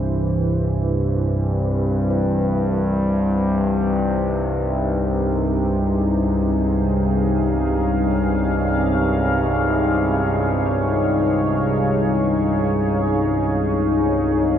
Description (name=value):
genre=dark ambient drone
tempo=free time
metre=none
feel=none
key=unclear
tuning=A4 = 441 Hz
part: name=deep dark ambient pad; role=sustained chords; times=0.0-14.6 s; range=C3 to F5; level=-21 LUFS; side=equal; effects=chorus, built-in reverb
part: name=analog drone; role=drone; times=0.0-14.6 s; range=C2 to G2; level=-20 LUFS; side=equal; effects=chorus
part: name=quartz singing bowl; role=texture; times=0.0-14.6 s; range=E4 to B4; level=-34 LUFS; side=left 7 dB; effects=none
room=wet plate reverb, RT60 2.8 s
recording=none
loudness=-17 LUFS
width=side -9 dB against mid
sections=0.0-14.6 A section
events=none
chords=0.0 C; 2.1 B/C